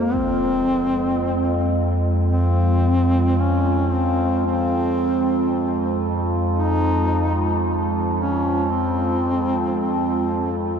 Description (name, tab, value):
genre	dark ambient drone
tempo	56 BPM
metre	4/4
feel	straight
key	F minor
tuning	A4 = 441 Hz
part	mellow duduk	melody	0.0-10.6 s	Bb3 to Eb4	-23 LUFS	left 1 dB	diffuse ambient delay
part	dark analog pad	sustained chords	0.0-10.8 s	Ab3 to C5	-27 LUFS	right 2 dB	chorus
part	overtone-sweeping drone	drone	0.0-10.8 s	F2	-20 LUFS	equal	chorus, built-in reverb, phaser
room	wet huge ambient reverb, RT60 8.7 s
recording	dark, warm production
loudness	-18 LUFS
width	side -7 dB against mid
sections	0.0-10.8 A section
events	fade-in on analog synth pad 0.0-10.8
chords	0.0 Fm